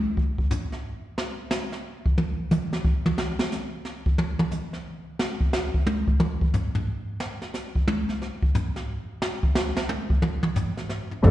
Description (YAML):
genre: jazz piano trio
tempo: 179 BPM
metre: 3/4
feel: swing 63% on 8ths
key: unclear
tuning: A4 = 440 Hz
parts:
  - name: jazz brush drum kit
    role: drums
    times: 0.2-11.3 s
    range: brushed snare drum, hi-hat, kick drum, snare drum, toms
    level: -24 LUFS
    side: equal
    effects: none
  - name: warm upright piano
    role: melody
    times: 11.2-11.3 s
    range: G3 to A4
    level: -18 LUFS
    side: left 1 dB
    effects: none
  - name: upright bass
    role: bass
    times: 11.2-11.3 s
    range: F2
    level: -13 LUFS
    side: equal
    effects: none
room: moderate club reverb, RT60 0.8 s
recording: live gig heard through the venue's PA, recital hall reverb, nothing above 10.8 kHz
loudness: -24 LUFS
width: side -14 dB against mid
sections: 0.0-3.2 A section; 3.2-11.2 A section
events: drum solo 0.0-11.2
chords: none